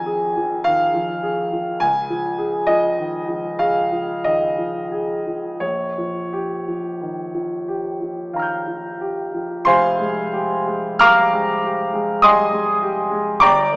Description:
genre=classical, impressionist solo piano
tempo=42-53 BPM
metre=3/4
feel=rubato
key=F minor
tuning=A4 = 440 Hz
part: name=clear concert grand piano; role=solo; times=0.0-13.8 s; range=F1 to G6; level=-17 LUFS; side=equal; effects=none
room=moderate scoring stage reverb, RT60 1.9 s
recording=small speaker sound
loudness=-17 LUFS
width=side -26 dB against mid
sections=0.0-9.7 A section; 9.7-13.8 A section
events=none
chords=0.0 Fm7; 1.8 Dbadd9; 5.6 Bbm6; 9.7 Fm11

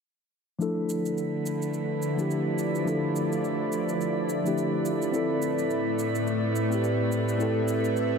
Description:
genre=organic downtempo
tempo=106 BPM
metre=4/4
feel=swing 58% on 16ths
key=unclear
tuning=A4 = 440 Hz
part: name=mellow tine electric piano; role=accompaniment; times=0.6-8.2 s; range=F3 to A4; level=-28 LUFS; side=left 1 dB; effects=medium stereo tremolo, low-pass filter, ping-pong delay
part: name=bowed-like drone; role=sustained chords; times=1.0-8.2 s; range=A2 to E5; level=-28 LUFS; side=equal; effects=built-in reverb
part: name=shaker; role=drums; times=0.6-8.1 s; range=none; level=-44 LUFS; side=right 3 dB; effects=none
part: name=drifting glass-harmonics texture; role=texture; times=1.0-8.2 s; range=B4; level=-34 LUFS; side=right 10 dB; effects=chorus, built-in reverb
room=wet concert hall reverb, RT60 2.1 s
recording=none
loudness=-25 LUFS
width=side -6 dB against mid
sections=0.6-8.2 A section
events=filter sweep on tine electric piano 0.6-8.2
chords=0.6 Dmadd9; 5.1 Am

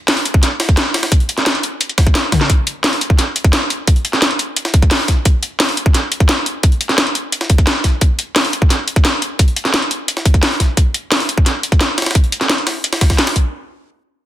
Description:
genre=drum and bass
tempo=174 BPM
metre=4/4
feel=straight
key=none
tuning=none
part: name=drum and bass drum kit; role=drums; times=0.1-13.4 s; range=hi-hat, snare drum, toms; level=-16 LUFS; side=equal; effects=none
part: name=jungle sampler-style drum kit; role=drums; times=0.1-13.4 s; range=hi-hat, snare drum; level=-22 LUFS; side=equal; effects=high-pass filter on hats, high-pass filter on snare
part: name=electronic kick drum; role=drums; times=0.3-13.4 s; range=none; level=-12 LUFS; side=equal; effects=none
room=light reverb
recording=dense, heavily limited modern master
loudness=-12 LUFS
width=side -13 dB against mid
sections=0.0-13.5 A section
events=drum fill 2.3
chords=none

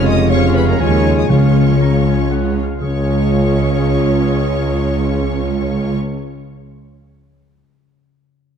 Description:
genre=cinematic, heroic adventure film score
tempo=121 BPM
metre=3/4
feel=straight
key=Db major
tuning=A4 = 440 Hz
part: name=rich symphonic violin section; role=melody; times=0.0-5.9 s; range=Bb5 to Eb6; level=-29 LUFS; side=left 2 dB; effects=none
part: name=rich symphonic violin section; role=second line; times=0.0-6.0 s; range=F4 to Db5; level=-28 LUFS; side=left 2 dB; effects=none
part: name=warm clarinet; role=second line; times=0.0-5.9 s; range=Ab4 to Bb5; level=-29 LUFS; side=equal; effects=none
part: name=clear symphonic viola section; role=accompaniment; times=0.0-5.9 s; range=Ab3 to Db4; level=-24 LUFS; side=right 2 dB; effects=none
part: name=mellow French horn section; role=sustained chords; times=0.0-6.0 s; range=Db4 to F4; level=-24 LUFS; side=left 6 dB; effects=none
part: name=mellow trombone section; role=sustained chords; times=0.0-5.9 s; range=Db3 to Ab3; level=-24 LUFS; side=right 3 dB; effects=none
part: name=concert harp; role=arpeggios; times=0.0-6.7 s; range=F2 to Db6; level=-22 LUFS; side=left 8 dB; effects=none
part: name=rich symphonic cello section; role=bass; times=0.0-6.0 s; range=Db2 to F2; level=-21 LUFS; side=right 4 dB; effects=none
part: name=rich symphonic double bass section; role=bass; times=0.0-6.0 s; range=F1 to Eb2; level=-20 LUFS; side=right 3 dB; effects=none
part: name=warm tuba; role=bass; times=0.0-5.9 s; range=F1 to Eb2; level=-21 LUFS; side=right 2 dB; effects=none
part: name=mellow hollow silver concert flute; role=second line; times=0.1-5.9 s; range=Bb4 to Eb5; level=-26 LUFS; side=left 2 dB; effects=none
part: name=timpani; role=percussion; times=1.3-5.9 s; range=Db3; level=-19 LUFS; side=left 1 dB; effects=none
room=wet scoring stage reverb, RT60 2.0 s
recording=dark, warm production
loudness=-13 LUFS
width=side -7 dB against mid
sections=0.0-2.8 A section; 2.8-5.8 B section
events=none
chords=0.0 Db/F; 1.3 Db

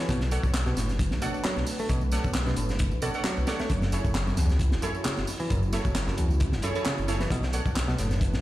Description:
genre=breakbeat, breaks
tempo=133 BPM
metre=4/4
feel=swing 55% on 16ths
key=B minor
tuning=A4 = 444 Hz
part: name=dark analog pad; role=sustained chords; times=0.0-8.4 s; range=A3 to B4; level=-37 LUFS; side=right 1 dB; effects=chorus, sidechain pumping
part: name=picked electric bass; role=riff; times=0.0-8.1 s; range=E2 to A3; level=-32 LUFS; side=equal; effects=tape echo
part: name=dark detuned saw bass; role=bass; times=0.1-8.4 s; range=F#1 to C#2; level=-28 LUFS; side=equal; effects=none
part: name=crunchy breakbeat drum kit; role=drums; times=0.1-8.4 s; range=hi-hat, kick drum, snare drum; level=-30 LUFS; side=equal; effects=none
part: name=electronic tambourine and handclaps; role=drums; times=0.1-8.4 s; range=none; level=-37 LUFS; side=right 1 dB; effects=none
part: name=orchestra-hit-like synth stab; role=stabs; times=0.3-8.4 s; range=E4 to F#5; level=-35 LUFS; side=right 2 dB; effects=built-in reverb, cassette tape, tape echo
room=light reverb, studio reverb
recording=played on a big sound system in a bare room, stone room reverb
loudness=-24 LUFS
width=side -15 dB against mid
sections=0.0-8.4 A section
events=none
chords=0.1 Bm9; 3.7 F#m9; 7.3 Bm9

